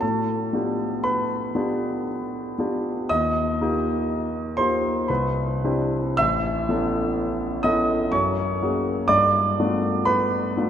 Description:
classical, impressionist solo piano; 52-63 BPM; 3/4; rubato; A4 = 445 Hz
warm concert grand piano; solo; 0.0-10.7 s; A1 to E6; -21 LUFS; equal
wet cathedral reverb, RT60 5.3 s; in a vast, echoing space; -21 LUFS; side -9 dB against mid
0.0-10.7 A section
0.0 G9/A; 3.1 D#add9; 5.1 Cadd9; 6.2 Aadd9; 8.1 F#add9; 9.1 G9
| 0.02 1.05 2.07 | 3.09 4.08 5.09 | 6.19 7.16 8.13 | 9.10 10.07

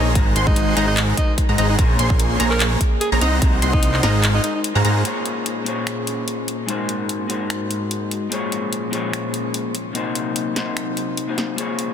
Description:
future bass; 147 BPM; 4/4; swing 55% on 16ths, half-time; Bb minor; A4 = 440 Hz
clear alto saxophone; melody; 0.0-4.6 s; Eb4 to Bb4; -27 LUFS; equal; sidechain pumping, tape echo
electric guitar through a small old amp; accompaniment; 0.0-11.9 s; Bb2 to C6; -25 LUFS; left 3 dB; sidechain pumping, tape echo
wide unison pluck; arpeggios; 0.0-5.0 s; Bb5 to C6; -28 LUFS; right 2 dB; sidechain pumping, tape echo
dense compressed supersaw; riff; 0.0-5.0 s; Ab3 to C6; -25 LUFS; right 1 dB; sidechain pumping, tape echo
fat analog bass; bass; 0.0-5.0 s; Ab1 to Ab2; -20 LUFS; equal; sidechain pumping
big-room dance drum kit; drums; 0.2-11.9 s; finger snaps, handclaps, hi-hat, snare drum; -26 LUFS; left 1 dB
electronic kick drum; drums; 0.2-3.8 s; -18 LUFS; equal
airy breathy pad; sustained chords; 5.0-11.9 s; Ab2 to C6; -29 LUFS; left 1 dB; chorus, vintage 12-bit sampler grit, sidechain pumping
light reverb; dense, heavily limited modern master; -18 LUFS; side -8 dB against mid
0.0-5.1 A section; 5.1-11.9 B section
drop 0.0-5.1; kick drops out 4.2-5.1
0.2 Ab7; 1.8 Bbm7; 3.2 Ab13; 5.1 Bbm7; 6.7 Ab7; 8.3 Bbm7; 9.7 Cm7b5
| 0.15 0.56 0.97 1.38 | 1.79 2.19 2.60 3.01 | 3.42 3.83 4.24 4.64 | 5.05 5.46 5.87 6.28 | 6.68 7.09 7.50 7.91 | 8.32 8.73 9.13 9.54 | 9.95 10.36 10.77 11.18 | 11.58

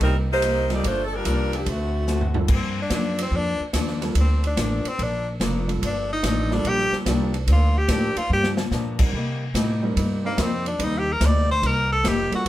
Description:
jazz, big band swing; 145 BPM; 4/4; swing 67% on 8ths; G minor; A4 = 439 Hz
edgy saxophone section; melody; 0.0-2.3 s; D3 to D5; -24 LUFS; equal
fingerpicked acoustic archtop guitar; accompaniment; 0.0-12.5 s; G2 to F#4; -30 LUFS; left 3 dB
warm grand piano; accompaniment; 0.0-12.4 s; G3 to Bb4; -29 LUFS; right 3 dB
upright bass; bass; 0.0-12.5 s; F1 to C3; -23 LUFS; equal
swinging big-band drum kit; drums; 0.0-12.5 s; crash cymbal, hi-hat, kick drum, ride cymbal, snare drum, toms; -27 LUFS; equal
edgy tenor saxophone; melody; 2.5-12.5 s; Bb3 to D5; -24 LUFS; left 1 dB
moderate studio reverb, RT60 0.6 s; band playing live in one room; -20 LUFS; side -14 dB against mid
0.0-2.5 A section; 2.5-12.5 B section
drum fill 2.1-2.5, 8.3-8.7; tenor saxophone solo 2.5-12.5
0.0 Cm7; 0.8 Gm7; 1.7 D7; 2.5 Gm7; 9.1 Cm7
0.01 0.42 | 0.84 1.25 1.67 2.08 | 2.50 2.91 3.33 3.74 | 4.16 4.57 4.99 5.40 | 5.81 6.23 6.64 7.06 | 7.47 7.89 8.30 8.72 | 9.13 9.55 9.96 10.38 | 10.79 11.21 11.62 12.04 | 12.46

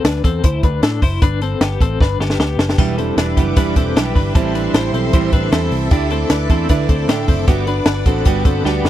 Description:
jangly indie pop; 154 BPM; 4/4; straight; A4 = 440 Hz
twelve-string electric guitar; arpeggios; 0.0-8.9 s; B3 to C5; -22 LUFS; left 7 dB; tremolo
vintage muted picked electric bass; bass; 0.0-8.9 s; E1 to A2; -20 LUFS; equal
compact cocktail drum kit; drums; 0.0-8.9 s; hi-hat, kick drum, snare drum, splash cymbal; -15 LUFS; equal
fingerpicked plugged-in steel-string acoustic guitar; accompaniment; 2.8-8.9 s; E2 to F#4; -20 LUFS; right 8 dB
string machine, violins; sustained chords; 2.8-8.9 s; A4 to D6; -27 LUFS; right 1 dB; ensemble chorus
studio reverb; dry, close 1970s-style studio recording; -13 LUFS; side -12 dB against mid
0.0-8.9 A section
drum fill 2.0-2.8, 8.6
0.0 Dsus2; 1.2 G; 2.8 Em7; 4.3 Am7; 5.9 Dsus2; 7.5 Gmaj7
0.05 0.44 0.83 | 1.22 1.61 2.00 2.39 | 2.78 3.17 3.57 3.96 | 4.35 4.74 5.13 5.52 | 5.91 6.30 6.69 7.08 | 7.47 7.87 8.26 8.65

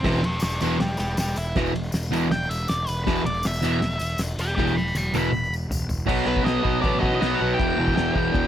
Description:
garage rock duo or trio; 159 BPM; 4/4; straight; E minor; A4 = 440 Hz
octave-fuzz lead guitar; melody; 0.0-8.5 s; D4 to D6; -27 LUFS; equal; distortion
fuzz guitar; riff; 0.0-8.5 s; E2 to B3; -23 LUFS; equal; distortion
fuzz picked electric bass; bass; 0.0-8.5 s; E1 to B1; -28 LUFS; equal; overdrive
cloth-damped thuddy drum kit; drums; 0.0-8.4 s; crash cymbal, kick drum, ride cymbal, snare drum, toms; -28 LUFS; equal
tambourine; percussion; 0.0-6.0 s; -39 LUFS; left 4 dB
little or no reverb; -21 LUFS; side -10 dB against mid
0.0-6.1 A section; 6.1-8.5 B section
lead electric guitar solo 0.0-6.1; drum fill 4.6-6.1
0.0 E5; 6.1 B; 7.6 Em
| 0.03 0.41 0.79 1.17 | 1.55 1.93 2.31 2.68 | 3.06 3.44 3.82 4.20 | 4.57 4.95 5.33 5.70 | 6.08 6.46 6.83 7.21 | 7.58 7.96 8.34

